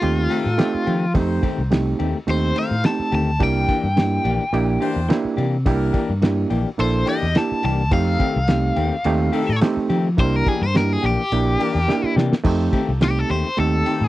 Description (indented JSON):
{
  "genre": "straight-eighth soul blues",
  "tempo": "106 BPM",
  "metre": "4/4",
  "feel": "swing 53% on 16ths",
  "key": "F mixolydian",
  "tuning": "A4 = 440 Hz",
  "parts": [
    { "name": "overdriven electric guitar", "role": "melody", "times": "0.0-14.1 s", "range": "F4 to A5", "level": "-24 LUFS", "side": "left 2 dB", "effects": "tremolo" },
    { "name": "overdriven reed electric piano", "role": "accompaniment", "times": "0.0-13.9 s", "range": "A3 to A4", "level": "-22 LUFS", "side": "right 4 dB", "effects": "none" },
    { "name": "fingered electric bass", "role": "bass", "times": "0.0-14.1 s", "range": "Bb1 to F3", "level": "-21 LUFS", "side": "equal", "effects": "none" },
    { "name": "cloth-damped thuddy drum kit", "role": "drums", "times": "0.0-14.0 s", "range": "crash cymbal, kick drum, ride cymbal, snare drum", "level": "-22 LUFS", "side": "equal", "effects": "none" },
    { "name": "bright horn section", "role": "sustained chords", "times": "0.3-14.1 s", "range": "D4 to C5", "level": "-32 LUFS", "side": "left 2 dB", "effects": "none" },
    { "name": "clean electric guitar", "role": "stabs", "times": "0.3-14.0 s", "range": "Eb3 to G4", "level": "-25 LUFS", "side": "left 5 dB", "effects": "none" }
  ],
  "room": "little or no reverb",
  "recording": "dry, close 1970s-style studio recording",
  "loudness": "-17 LUFS",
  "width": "side -16 dB against mid",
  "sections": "0.0-12.4 A section; 12.4-14.1 A section",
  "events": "overdriven electric guitar solo 0.0-14.1; drum fill 11.9-12.4",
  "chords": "0.0 F9; 3.4 C9; 7.9 F9; 10.2 C9; 12.4 F9"
}